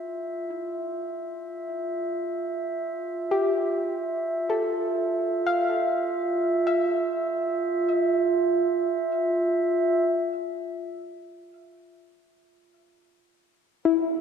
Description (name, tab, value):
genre	ambient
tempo	free time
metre	none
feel	none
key	F major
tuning	A4 = 440 Hz
part	soft round pluck	arpeggios	0.0-14.2 s	E4 to F5	-27 LUFS	left 4 dB	chorus, ping-pong delay
part	glass harmonica	texture	0.0-10.0 s	F4 to E5	-25 LUFS	right 2 dB	none
room	wet lush hall reverb, RT60 2.8 s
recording	cassette tape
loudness	-24 LUFS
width	side -7 dB against mid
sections	0.0-10.0 A section; 10.0-14.2 B section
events	fade-in on glass harmonica 0.0-10.0; fade-out on synth pluck 0.0-10.0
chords	0.0 N.C.; 2.8 Fmaj9; 6.4 Fmaj7; 10.0 N.C.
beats	free time